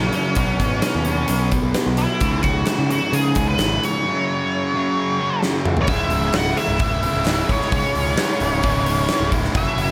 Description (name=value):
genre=classic rock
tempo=131 BPM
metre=4/4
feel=straight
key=C# minor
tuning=A4 = 444 Hz
part: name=octave-fuzz lead guitar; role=melody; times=0.0-9.9 s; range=C#4 to F#5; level=-26 LUFS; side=equal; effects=wah, distortion
part: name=distorted electric guitar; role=riff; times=0.0-9.9 s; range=C#2 to F#4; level=-27 LUFS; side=equal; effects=distortion
part: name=distorted electric guitar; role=riff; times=0.0-5.9 s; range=C#2 to B3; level=-30 LUFS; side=equal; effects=distortion
part: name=growling picked electric bass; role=bass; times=0.0-9.9 s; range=C#1 to C#3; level=-26 LUFS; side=equal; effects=overdrive
part: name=big rock drum kit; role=drums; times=0.1-9.9 s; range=hi-hat, kick drum, snare drum, toms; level=-25 LUFS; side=equal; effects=none
part: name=group handclap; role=percussion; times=2.7-9.2 s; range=none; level=-40 LUFS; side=equal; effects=none
part: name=octave-fuzz lead guitar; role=second line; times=5.8-9.9 s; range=C#4 to F#4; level=-31 LUFS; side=equal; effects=distortion, analog delay
part: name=biting overdriven guitar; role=riff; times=5.9-9.9 s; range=C#2 to F#3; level=-30 LUFS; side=equal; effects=none
room=light reverb, small room reverb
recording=none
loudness=-20 LUFS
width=mono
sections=0.0-5.9 A section; 5.9-9.9 B section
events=drum fill 5.4-5.9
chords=0.4 Badd9; 2.2 C#5; 4.1 F#5; 5.9 C#m